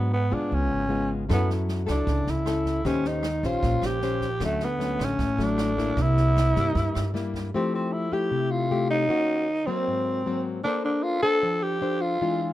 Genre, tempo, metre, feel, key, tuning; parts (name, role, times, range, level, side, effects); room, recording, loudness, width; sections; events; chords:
bossa nova; 154 BPM; 4/4; straight; F major from 7.5 s; A4 = 439 Hz
growling tenor saxophone; melody; 0.0-12.5 s; A3 to A4; -26 LUFS; right 1 dB
nylon-string guitar; accompaniment; 0.0-12.5 s; G2 to C5; -28 LUFS; left 4 dB
upright bass; bass; 0.0-7.5 s; G#1 to D3; -27 LUFS; right 1 dB
open jazz drum kit; drums; 1.3-7.4 s; kick drum, rim click, snare drum; -33 LUFS; right 2 dB
little or no reverb; minimal, uncompressed stereo recording; -23 LUFS; side -14 dB against mid
0.0-7.5 A section; 7.5-12.5 B section
0.0 G#m7b5; 0.5 C#7; 1.3 F#m7; 2.9 Eb13; 4.4 Dmaj7; 6.0 C7; 7.5 Fmaj9; 9.1 Ebm7; 9.9 Ab9; 10.6 Bbmaj9